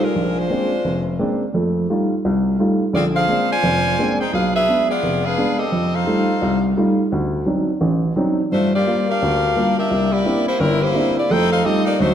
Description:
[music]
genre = jazz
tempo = 172 BPM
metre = 4/4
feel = swing 62% on 8ths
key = unclear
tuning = A4 = 440 Hz
[part]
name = edgy saxophone section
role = melody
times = 0.0-12.1 s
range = G3 to Ab5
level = -19 LUFS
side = left 1 dB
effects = none
[part]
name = dark upright piano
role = accompaniment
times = 0.0-12.1 s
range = F1 to F4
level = -18 LUFS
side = equal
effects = none
[sound]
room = wet scoring stage reverb, RT60 1.6 s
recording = dark, warm production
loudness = -16 LUFS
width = side -9 dB against mid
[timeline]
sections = 0.0-12.1 A section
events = none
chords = 0.1 Bb9; 1.5 F9; 2.9 Bb9; 4.3 Bdim7; 5.7 F9; 7.1 D7b9; 8.5 Gm7; 9.9 C9; 11.3 F9

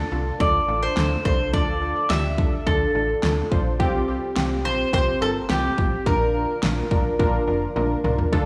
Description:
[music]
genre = synth-pop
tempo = 106 BPM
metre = 4/4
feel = straight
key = unclear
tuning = A4 = 440 Hz
[part]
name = mandolin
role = melody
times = 0.0-7.7 s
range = G4 to E5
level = -27 LUFS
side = equal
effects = tape echo
[part]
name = warm analog keys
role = accompaniment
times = 0.0-8.5 s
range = C4 to C5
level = -28 LUFS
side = equal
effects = chorus
[part]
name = slap-like FM bass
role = bass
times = 0.0-8.5 s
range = F1 to D2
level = -29 LUFS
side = equal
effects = none
[part]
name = pop drum kit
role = drums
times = 0.4-8.5 s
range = kick drum, snare drum, toms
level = -27 LUFS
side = equal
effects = gated reverb
[sound]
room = light reverb, digital ambience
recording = studio reverb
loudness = -22 LUFS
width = mono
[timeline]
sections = 0.0-8.5 A section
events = drum fill 7.8-8.3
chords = 0.0 Dm; 3.8 Csus4; 6.1 Bb

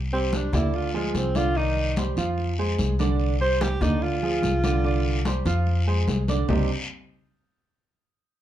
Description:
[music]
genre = Afro-Cuban jazz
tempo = 146 BPM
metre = 4/4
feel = straight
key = C minor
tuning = A4 = 439 Hz
[part]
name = upright bass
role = bass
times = 0.0-6.7 s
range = C2 to F2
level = -25 LUFS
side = equal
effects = none
[part]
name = breathy alto saxophone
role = melody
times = 0.1-5.3 s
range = Ab3 to C5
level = -26 LUFS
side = equal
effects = none
[part]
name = warm concert grand piano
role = accompaniment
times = 0.1-6.7 s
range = C3 to F5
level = -28 LUFS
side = right 4 dB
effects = none
[part]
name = congas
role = percussion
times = 0.1-6.6 s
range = none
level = -29 LUFS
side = left 1 dB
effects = none
[part]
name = guiro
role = percussion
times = 0.3-6.6 s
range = none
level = -36 LUFS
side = left 4 dB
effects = none
[sound]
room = moderate club reverb, RT60 0.7 s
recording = dark, warm production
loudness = -21 LUFS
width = side -12 dB against mid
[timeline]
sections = 0.0-6.5 A section; 6.5-8.1 B section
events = alto saxophone solo 0.0-6.5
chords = 0.0 Csus2; 0.7 Dm7b5; 1.6 Cmadd9; 2.4 Fm; 3.2 Csus2; 4.0 Dm7b5; 4.8 Csus2; 5.7 Fm; 6.5 Cmadd9

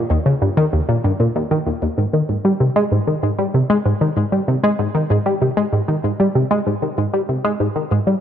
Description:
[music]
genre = ambient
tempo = 96 BPM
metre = 4/4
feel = straight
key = Ab major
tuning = A4 = 440 Hz
[part]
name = tight sequenced synth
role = solo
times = 0.0-8.2 s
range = Eb2 to Ab3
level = -16 LUFS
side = equal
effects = chorus, cassette tape, ping-pong delay
[sound]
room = moderate plate reverb, RT60 3.2 s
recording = cassette tape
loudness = -16 LUFS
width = side -9 dB against mid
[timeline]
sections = 0.0-2.0 A section; 2.0-8.2 B section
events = none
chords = none

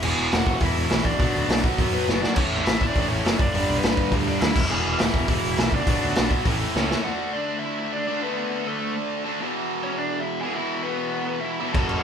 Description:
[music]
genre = punk rock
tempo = 205 BPM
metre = 4/4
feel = straight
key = unclear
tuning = A4 = 439 Hz
[part]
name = biting lead guitar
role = melody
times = 0.0-12.0 s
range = A3 to A5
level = -28 LUFS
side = left 2 dB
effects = overdrive
[part]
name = raw garage guitar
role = riff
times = 0.0-12.0 s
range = E2 to D4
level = -30 LUFS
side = left 6 dB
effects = overdrive
[part]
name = sludgy distorted guitar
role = riff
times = 0.0-7.1, 11.7-12.0 s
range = E2 to B3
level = -30 LUFS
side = equal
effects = overdrive
[part]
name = tight distorted guitar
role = riff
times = 0.0-12.0 s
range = E2 to D4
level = -29 LUFS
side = right 7 dB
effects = distortion
[part]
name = growling picked electric bass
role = bass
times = 0.0-6.9, 11.7-12.0 s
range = E1 to F#2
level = -30 LUFS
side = equal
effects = overdrive
[part]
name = raw garage drum kit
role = drums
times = 0.0-7.0, 11.7-12.0 s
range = crash cymbal, hi-hat, kick drum, snare drum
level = -23 LUFS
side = equal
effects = none
[sound]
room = light reverb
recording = band playing live in one room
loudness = -21 LUFS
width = side -7 dB against mid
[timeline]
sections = 0.0-7.1 A section; 7.1-12.0 B section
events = drum fill 2.1, 6.8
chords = 0.0 E; 1.2 Bm; 2.4 A; 3.4 G; 4.6 E; 5.9 Bm; 6.5 A; 7.1 D; 9.4 E5

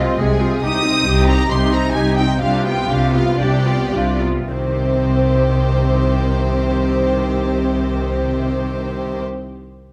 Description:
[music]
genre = classical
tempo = 101-142 BPM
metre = 4/4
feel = rubato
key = C minor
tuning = A4 = 440 Hz
[part]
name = dark symphonic violin section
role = melody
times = 0.0-9.2 s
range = C5 to Eb6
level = -25 LUFS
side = equal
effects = none
[part]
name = clear studio violin section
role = second line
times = 0.0-9.2 s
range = Eb4 to C5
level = -28 LUFS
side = equal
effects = none
[part]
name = clear symphonic viola section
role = accompaniment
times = 0.0-9.2 s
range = Eb3 to Ab4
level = -25 LUFS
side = equal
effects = none
[part]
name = rich symphonic cello section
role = bass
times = 0.0-9.2 s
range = C3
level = -24 LUFS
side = equal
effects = none
[part]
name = rich symphonic double bass section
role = bass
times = 0.0-9.2 s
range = C2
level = -22 LUFS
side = equal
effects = none
[sound]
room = light reverb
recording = close, detailed microphones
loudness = -18 LUFS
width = mono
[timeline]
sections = 0.0-4.5 A section; 4.5-9.0 B section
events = slowing down 0.0-4.5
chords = 0.0 Fm/C; 0.6 Cm; 2.4 G7/C; 4.5 Cm

